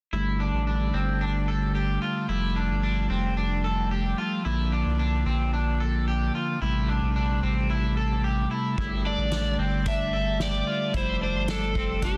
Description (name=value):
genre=dream pop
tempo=111 BPM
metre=4/4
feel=straight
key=G dorian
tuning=A4 = 439 Hz
part: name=mellow tonewheel organ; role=sustained chords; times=0.1-12.2 s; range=C3 to Bb3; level=-32 LUFS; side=equal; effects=slow rotary speaker
part: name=electric guitar at the edge of break-up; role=arpeggios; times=0.1-12.2 s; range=C4 to A4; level=-34 LUFS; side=equal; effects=lush chorus, digital delay
part: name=round analog bass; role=bass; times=0.1-12.2 s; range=F1 to C2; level=-30 LUFS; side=equal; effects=none
part: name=soft-mallet drum kit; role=drums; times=8.8-12.1 s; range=crash cymbal, hi-hat, kick drum, snare drum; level=-34 LUFS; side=equal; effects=none
part: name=overdriven slide guitar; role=melody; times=9.1-12.2 s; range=G4 to E5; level=-31 LUFS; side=equal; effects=digital delay
room=light reverb, small room reverb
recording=dense, heavily limited modern master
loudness=-26 LUFS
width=mono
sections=0.1-8.8 A section; 8.8-12.2 B section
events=none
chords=0.1 Gsus2; 2.3 Fadd9; 4.5 Bb; 6.6 Am7; 8.8 Gsus2; 10.9 Fadd9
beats=| 0.13 0.67 1.21 1.75 | 2.29 2.83 3.37 3.92 | 4.46 5.00 5.54 6.08 | 6.62 7.16 7.70 8.24 | 8.78 9.32 9.86 10.40 | 10.94 11.48 12.02